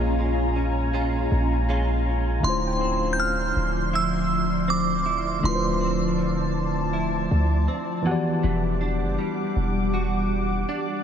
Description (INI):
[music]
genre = R&B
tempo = 80 BPM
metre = 4/4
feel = straight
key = unclear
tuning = A4 = 439 Hz
[part]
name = mellow tine electric piano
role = accompaniment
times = 0.0-11.0 s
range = A#2 to D#5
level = -29 LUFS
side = left 2 dB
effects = medium stereo tremolo
[part]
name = glassy FM pad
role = sustained chords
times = 0.0-11.0 s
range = F3 to D6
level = -27 LUFS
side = left 1 dB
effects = ensemble chorus, built-in reverb
[part]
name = direct-recorded clean electric guitar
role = arpeggios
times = 0.0-11.0 s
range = A#2 to F#4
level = -32 LUFS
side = right 5 dB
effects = ensemble chorus, tape echo
[part]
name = warm 808-style bass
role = bass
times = 0.0-10.6 s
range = D1 to D2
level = -26 LUFS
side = equal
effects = none
[part]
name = glassy synth bell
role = melody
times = 2.4-7.7 s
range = C6 to G6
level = -27 LUFS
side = right 2 dB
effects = chorus, phaser, tape echo
[part]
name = soft round pluck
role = texture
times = 2.4-9.5 s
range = E4 to G5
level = -40 LUFS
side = right 1 dB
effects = none
[sound]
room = moderate huge ambient reverb, RT60 8.1 s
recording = dreamy mix soaked in reverb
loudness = -21 LUFS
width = side -8 dB against mid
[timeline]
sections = 0.0-2.4 A section; 2.4-11.0 B section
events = none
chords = 0.0 A#m7; 2.4 Dm9; 8.1 Em9